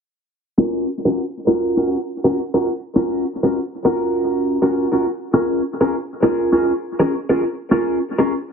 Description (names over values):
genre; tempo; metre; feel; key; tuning
glitch hop; 101 BPM; 4/4; swing 60% on 16ths; unclear; A4 = 440 Hz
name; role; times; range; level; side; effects
semi-hollow electric guitar; stabs; 0.6-8.3 s; Db4 to Bb4; -17 LUFS; equal; wide subtle chorus, low-pass filter, tape echo
room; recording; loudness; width
wet studio reverb, RT60 0.6 s; dense, heavily limited modern master, low-pass filter; -17 LUFS; side -6 dB against mid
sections
0.6-8.5 A section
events
filter sweep on clean electric guitar 0.6-8.5; filter sweep 0.6-8.5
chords
0.6 Gbmaj7/Db; 5.3 Bbm7